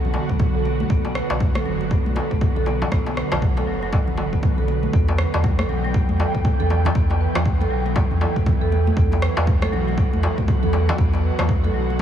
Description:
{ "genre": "afro house", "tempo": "119 BPM", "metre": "4/4", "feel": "swing 60% on 16ths", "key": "unclear", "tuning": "A4 = 440 Hz", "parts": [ { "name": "ethereal airy pad", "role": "sustained chords", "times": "0.0-12.0 s", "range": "D3 to G5", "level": "-27 LUFS", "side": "equal", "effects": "ensemble chorus, built-in reverb, sidechain pumping" }, { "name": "marimba with soft mallets", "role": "arpeggios", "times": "0.0-12.0 s", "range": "F#3 to B4", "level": "-27 LUFS", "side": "right 2 dB", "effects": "vintage 12-bit sampler grit, sidechain pumping, low-pass filter, tape echo" }, { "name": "warm sub bass", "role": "bass", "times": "0.0-12.0 s", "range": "F#1 to E2", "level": "-23 LUFS", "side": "equal", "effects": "sidechain pumping" }, { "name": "congas", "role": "percussion", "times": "0.0-12.0 s", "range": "none", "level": "-31 LUFS", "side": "right 3 dB", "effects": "none" }, { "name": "darbuka", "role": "percussion", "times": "0.1-11.5 s", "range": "none", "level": "-30 LUFS", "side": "left 3 dB", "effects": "none" }, { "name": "electronic kick drum", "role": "drums", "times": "0.3-12.0 s", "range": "none", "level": "-21 LUFS", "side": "equal", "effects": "overdrive, small room ambience" }, { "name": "electronic rim click", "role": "drums", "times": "1.2-11.5 s", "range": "none", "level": "-33 LUFS", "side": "equal", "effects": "small room ambience" } ], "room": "light reverb, small room ambience", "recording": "none", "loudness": "-18 LUFS", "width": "side -9 dB against mid", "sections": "0.0-12.0 A section", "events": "none", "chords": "0.0 Bm; 4.9 Em" }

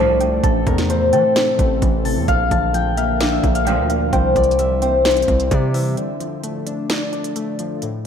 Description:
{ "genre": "hip hop, trap", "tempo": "130 BPM", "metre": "4/4", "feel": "half-time", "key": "D minor", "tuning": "A4 = 441 Hz", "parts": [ { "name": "concert harp", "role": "melody", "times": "0.0-7.5 s", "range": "A4 to A5", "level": "-19 LUFS", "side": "left 3 dB", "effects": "tape echo" }, { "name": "soft round pluck", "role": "second line", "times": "0.0-5.9 s", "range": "E5 to A5", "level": "-27 LUFS", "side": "right 5 dB", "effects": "chorus, tape echo" }, { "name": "warbly lo-fi synth keys", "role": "accompaniment", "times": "0.0-8.1 s", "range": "A2 to D5", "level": "-25 LUFS", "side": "left 3 dB", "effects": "chorus" }, { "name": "ethereal airy pad", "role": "sustained chords", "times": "0.0-6.0 s", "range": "E3 to C5", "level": "-26 LUFS", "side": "right 1 dB", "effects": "ensemble chorus, built-in reverb" }, { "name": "rich studio string section", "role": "stabs", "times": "0.0-0.4, 3.7-4.1 s", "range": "D2 to F3", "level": "-26 LUFS", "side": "right 8 dB", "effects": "none" }, { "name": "distorted 808-style bass", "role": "bass", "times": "0.0-6.0 s", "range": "A1 to E3", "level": "-21 LUFS", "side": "right 1 dB", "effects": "distortion" }, { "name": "trap drum kit", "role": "drums", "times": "0.2-7.9 s", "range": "hi-hat, kick drum, snare drum", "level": "-22 LUFS", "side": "right 1 dB", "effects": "none" } ], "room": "moderate plate reverb, RT60 1.9 s, digital ambience", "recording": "dreamy mix soaked in reverb", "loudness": "-16 LUFS", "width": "side -8 dB against mid", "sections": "0.0-6.0 A section; 6.0-8.1 B section", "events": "break 6.0-8.1", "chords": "0.4 Am; 2.3 Bb; 4.1 C; 6.0 Dm" }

